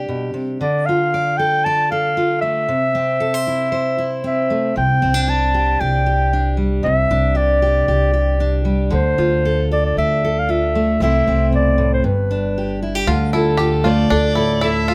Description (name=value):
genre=acoustic folk duo or small band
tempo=115 BPM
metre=4/4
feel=straight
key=unclear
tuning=A4 = 440 Hz
part: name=mellow clarinet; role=melody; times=0.0-12.8 s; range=B4 to A5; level=-21 LUFS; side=equal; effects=none
part: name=fingerpicked steel-string acoustic guitar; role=accompaniment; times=0.0-14.9 s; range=G2 to D5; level=-22 LUFS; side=equal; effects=none
part: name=upright bass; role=bass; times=4.8-14.9 s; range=G1 to D2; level=-22 LUFS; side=equal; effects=none
part: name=bluegrass banjo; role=arpeggios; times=13.1-14.9 s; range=D4 to G4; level=-24 LUFS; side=equal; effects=none
part: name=dark fiddle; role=second line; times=13.3-14.9 s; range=A4 to E5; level=-22 LUFS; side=equal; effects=none
room=light reverb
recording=close, detailed microphones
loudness=-18 LUFS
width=mono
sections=0.0-13.1 A section; 13.1-14.9 B section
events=fiddle solo 13.1-14.9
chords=0.0 Csus2; 0.6 Dm; 2.7 Am/C; 4.8 Csus2; 8.9 Dmadd9; 11.0 Am/C; 12.0 G; 13.1 Dmadd9